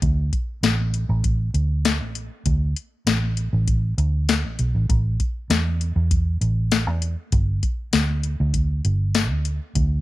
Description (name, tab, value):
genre	straight-eighth soul blues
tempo	99 BPM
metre	4/4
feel	straight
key	unclear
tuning	A4 = 440 Hz
part	vintage muted fingered electric bass	bass	0.0-10.0 s	G1 to E2	-21 LUFS	right 1 dB	none
part	soft vintage rhythm box	drums	0.0-9.9 s	hi-hat, kick drum, snare drum, tambourine	-22 LUFS	left 2 dB	none
room	little or no reverb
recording	1960s-style stereo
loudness	-20 LUFS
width	side -16 dB against mid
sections	0.0-10.0 A section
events	none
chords	none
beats	| 0.02 0.63 1.24 1.85 | 2.46 3.07 3.68 4.28 | 4.89 5.50 6.11 6.72 | 7.33 7.93 8.54 9.15 | 9.76